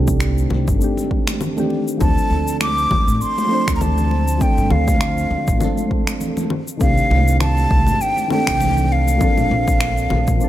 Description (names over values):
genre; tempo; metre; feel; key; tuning
sunset chillout; 100 BPM; 4/4; swing 56% on 16ths; C dorian; A4 = 440 Hz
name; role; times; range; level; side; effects
soft electric-piano-like synth keys; accompaniment; 0.0-10.5 s; Eb3 to C5; -22 LUFS; moving between left 3 dB and right 3 dB; chorus, auto-pan, digital delay
upright bass; bass; 0.0-10.4 s; G1 to Bb2; -19 LUFS; equal; none
electronic cabasa, finger snaps and congas; drums; 0.1-10.5 s; none; -26 LUFS; left 3 dB; none
electronic kick drum; drums; 0.1-10.4 s; none; -20 LUFS; equal; overdrive
congas; percussion; 0.2-10.2 s; none; -28 LUFS; equal; none
breathy hollow jazz flute; melody; 2.0-10.5 s; F5 to D6; -21 LUFS; equal; digital delay
room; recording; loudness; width
light reverb; none; -15 LUFS; side -13 dB against mid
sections
0.0-10.5 A section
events
none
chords
0.0 Cm69; 2.0 Dm7; 6.5 Cm69; 9.2 Bbmaj9